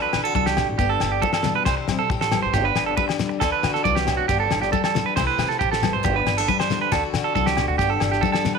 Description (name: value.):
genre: highlife guitar band.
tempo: 137 BPM.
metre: 4/4.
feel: straight.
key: G major.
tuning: A4 = 440 Hz.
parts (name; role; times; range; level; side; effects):
picked steel-string acoustic guitar; accompaniment; 0.0-8.6 s; G2 to G4; -28 LUFS; left 10 dB; none.
clean electric guitar; arpeggios; 0.0-8.6 s; F#4 to D5; -22 LUFS; right 10 dB; slapback echo.
upright bass; bass; 0.0-8.2 s; G1 to D3; -28 LUFS; equal; none.
damped 70s drum kit; drums; 0.1-8.6 s; kick drum, snare drum; -27 LUFS; left 4 dB; none.
agogo bells; percussion; 0.1-8.4 s; none; -33 LUFS; left 12 dB; none.
shekere; percussion; 0.1-8.6 s; none; -32 LUFS; left 6 dB; none.
congas; percussion; 0.4-8.6 s; none; -28 LUFS; left 10 dB; none.
room: moderate echo chamber reverb, RT60 1.3 s, studio ambience.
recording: 1960s-style stereo with parts hard left and right.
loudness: -19 LUFS.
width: side -5 dB against mid.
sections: 0.0-8.6 A section.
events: none.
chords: 0.0 D; 0.8 G; 1.7 C6; 2.5 G; 3.4 D; 4.3 G5; 5.2 C6; 6.0 G; 6.9 D; 7.8 G.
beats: 0.35 | 0.79 1.22 1.66 2.10 | 2.54 2.98 3.41 3.85 | 4.29 4.73 5.16 5.60 | 6.04 6.48 6.92 7.35 | 7.79 8.23.